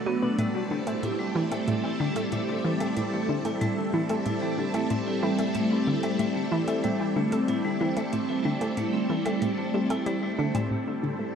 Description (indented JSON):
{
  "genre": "ambient, sequencer-driven space music",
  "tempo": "93 BPM",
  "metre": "4/4",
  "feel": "straight",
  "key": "A minor",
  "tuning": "A4 = 440 Hz",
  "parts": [
    { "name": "phased string machine", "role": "sustained chords", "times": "0.0-11.4 s", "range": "F#3 to A4", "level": "-28 LUFS", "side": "equal", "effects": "ensemble chorus, phaser" },
    { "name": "bubbling stepped-filter texture", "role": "texture", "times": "0.0-10.7 s", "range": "D5", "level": "-42 LUFS", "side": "right 1 dB", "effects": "chorus, built-in reverb" },
    { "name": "vibraphone with hard mallets", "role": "arpeggios", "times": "0.1-10.7 s", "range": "G3 to E4", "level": "-32 LUFS", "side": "right 1 dB", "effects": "auto-pan, ping-pong delay" },
    { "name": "analog pluck", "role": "riff", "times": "0.1-11.3 s", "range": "A2 to B3", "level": "-30 LUFS", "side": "equal", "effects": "chorus, ping-pong delay" },
    { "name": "electronic hi-hat and woodblock", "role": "percussion", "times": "0.4-10.7 s", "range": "none", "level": "-43 LUFS", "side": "right 3 dB", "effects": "ping-pong delay" }
  ],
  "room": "wet huge ambient reverb, RT60 7.8 s",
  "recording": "dark, warm production",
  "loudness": "-24 LUFS",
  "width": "side -7 dB against mid",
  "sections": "0.0-10.7 A section",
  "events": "none",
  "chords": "0.4 Am7"
}